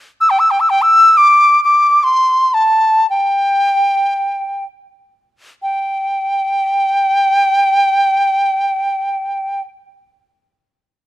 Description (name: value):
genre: chinese traditional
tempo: free time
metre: none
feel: none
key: G zhi mode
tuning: A4 = 439 Hz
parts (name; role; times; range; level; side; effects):
- large dizi; melody; 0.2-9.6 s; G5 to E6; -11 LUFS; equal; none
room: light reverb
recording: close, detailed microphones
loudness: -11 LUFS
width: side -14 dB against mid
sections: 0.0-5.6 A section; 5.6-8.8 B section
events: slowing down 0.0-5.6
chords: none